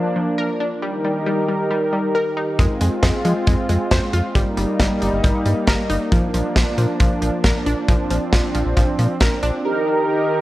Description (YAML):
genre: synth-pop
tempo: 136 BPM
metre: 4/4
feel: straight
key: Eb major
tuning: A4 = 440 Hz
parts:
  - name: warm analog pad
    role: sustained chords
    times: 0.0-10.4 s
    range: Eb3 to Bb4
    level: -22 LUFS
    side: equal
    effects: chorus
  - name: wide unison pluck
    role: arpeggios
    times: 0.0-9.6 s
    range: F3 to C5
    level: -25 LUFS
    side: left 1 dB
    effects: tape echo
  - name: round analog bass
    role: bass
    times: 2.6-9.5 s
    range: G1 to F3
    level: -20 LUFS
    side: equal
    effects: none
  - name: modern studio drum kit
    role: drums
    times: 2.6-9.5 s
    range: hi-hat, kick drum, snare drum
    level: -19 LUFS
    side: equal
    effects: none
  - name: mellow synth brass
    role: accompaniment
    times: 9.6-10.4 s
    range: Eb4 to Bb4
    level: -18 LUFS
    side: right 1 dB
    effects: chorus
room: light reverb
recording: worn, warbling old tape, cassette tape, warbly pitch drift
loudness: -17 LUFS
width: side -16 dB against mid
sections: 0.0-9.6 A section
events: none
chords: 0.0 Bb; 0.8 Eb; 2.6 Fm; 4.4 Eb/G; 6.1 Bb; 9.6 Eb